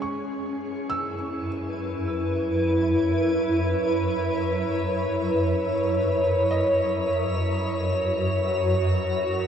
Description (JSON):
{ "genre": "ambient", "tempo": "free time", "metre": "none", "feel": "none", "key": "unclear", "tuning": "A4 = 440 Hz", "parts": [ { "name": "granular cloud pad", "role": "sustained chords", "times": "0.0-9.5 s", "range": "F#2 to C#5", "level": "-22 LUFS", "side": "equal", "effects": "built-in reverb" }, { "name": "felt-muted upright piano", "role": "arpeggios", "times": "0.0-9.5 s", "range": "G#3 to E6", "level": "-37 LUFS", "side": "right 1 dB", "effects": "tape echo" } ], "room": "wet shimmer reverb, RT60 7.8 s", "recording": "dark, warm production", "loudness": "-22 LUFS", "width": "side -8 dB against mid", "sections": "0.0-9.5 A section", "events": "fade-out on felt piano 0.0-9.5", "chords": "0.0 F#13sus4" }